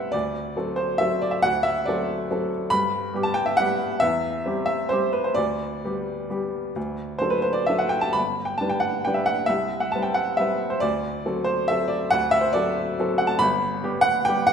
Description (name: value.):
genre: classical, piano waltz.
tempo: 124-146 BPM.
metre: 3/4.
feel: rubato.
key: G major.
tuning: A4 = 440 Hz.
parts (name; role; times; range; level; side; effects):
clear upright piano; solo; 0.0-14.5 s; G1 to B5; -21 LUFS; equal; none.
room: wet concert hall reverb, RT60 1.8 s.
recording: minimal, uncompressed stereo recording.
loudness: -21 LUFS.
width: side -7 dB against mid.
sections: 0.0-14.5 A section.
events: none.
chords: 0.1 D7; 2.7 G; 4.0 C/E; 5.4 G/D; 6.8 D; 8.2 G; 9.5 C5; 10.8 D7; 13.4 G.